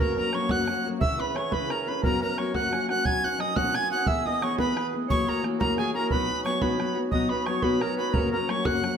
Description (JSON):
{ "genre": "celtic folk, Celtic jig", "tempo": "118 BPM (dotted quarters)", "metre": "6/8", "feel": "straight", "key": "B major", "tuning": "A4 = 440 Hz", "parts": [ { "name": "bright tin whistle", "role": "melody", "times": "0.0-8.9 s", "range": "G#5 to G#6", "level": "-29 LUFS", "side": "right 1 dB", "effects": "none" }, { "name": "accordion", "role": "second line", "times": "0.0-9.0 s", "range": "G#4 to G#5", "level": "-33 LUFS", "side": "right 2 dB", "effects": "none" }, { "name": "hammered dulcimer", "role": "second line", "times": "0.0-9.0 s", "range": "G#4 to G#5", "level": "-32 LUFS", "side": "right 7 dB", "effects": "none" }, { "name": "fingerpicked steel-string acoustic guitar", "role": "accompaniment", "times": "0.0-9.0 s", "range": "F#2 to G#4", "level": "-28 LUFS", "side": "left 4 dB", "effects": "none" }, { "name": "bodhran", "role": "percussion", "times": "0.2-8.9 s", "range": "none", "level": "-29 LUFS", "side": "right 1 dB", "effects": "none" } ], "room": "wet studio reverb, RT60 0.8 s", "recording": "band playing live in one room", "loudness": "-23 LUFS", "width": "side -7 dB against mid", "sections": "0.0-7.1 A section; 7.1-9.0 A section", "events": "none", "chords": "0.0 F#; 1.0 C#m; 2.0 F#sus4; 2.5 F#; 3.0 Badd9; 4.1 E; 5.1 F#7; 6.1 B; 8.1 F#", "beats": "0.49 | 1.00 1.51 | 2.02 2.54 | 3.05 3.56 | 4.07 4.58 | 5.09 5.60 | 6.11 6.62 | 7.13 7.64 | 8.14 8.65" }